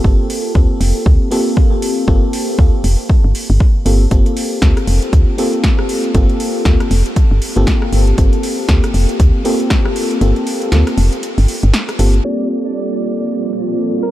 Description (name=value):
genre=deep house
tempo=118 BPM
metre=4/4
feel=swing 59% on 16ths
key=G minor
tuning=A4 = 440 Hz
part: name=mellow FM electric piano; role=stabs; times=0.0-14.1 s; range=Bb3 to A4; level=-18 LUFS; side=left 1 dB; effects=chorus, sidechain pumping, low-pass filter, diffuse ambient delay
part: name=woody FM bass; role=bass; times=0.0-12.2 s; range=F1 to D2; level=-13 LUFS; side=equal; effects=sidechain pumping
part: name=electronic kick drum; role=drums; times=0.0-9.8 s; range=none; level=-12 LUFS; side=equal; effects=overdrive, studio ambience
part: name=deep house drum kit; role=drums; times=0.3-12.2 s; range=hi-hat, rim click, snare drum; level=-23 LUFS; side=equal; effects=overdrive, low-pass filter on hats, studio ambience, low-pass filter on snare
part: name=plucky unison lead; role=melody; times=12.2-14.1 s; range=Bb4 to D5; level=-25 LUFS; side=right 3 dB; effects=diffuse ambient delay
part: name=hollow soft pad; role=sustained chords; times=12.2-14.1 s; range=G3 to A4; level=-21 LUFS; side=right 2 dB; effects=chorus, sidechain pumping
part: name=granular cloud pad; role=texture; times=13.1-14.1 s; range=Bb3 to C5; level=-23 LUFS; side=right 1 dB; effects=built-in reverb, sidechain pumping
part: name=shekere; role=percussion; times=12.3-14.1 s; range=none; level=-58 LUFS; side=right 2 dB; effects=none
room=light reverb, digital ambience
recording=low-pass filter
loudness=-12 LUFS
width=side -14 dB against mid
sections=0.0-12.2 A section; 12.2-14.1 B section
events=kick drops out 10.2-12.2; filter sweep on FM electric piano 12.2-14.1; filter sweep 12.2-14.1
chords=0.0 Gm11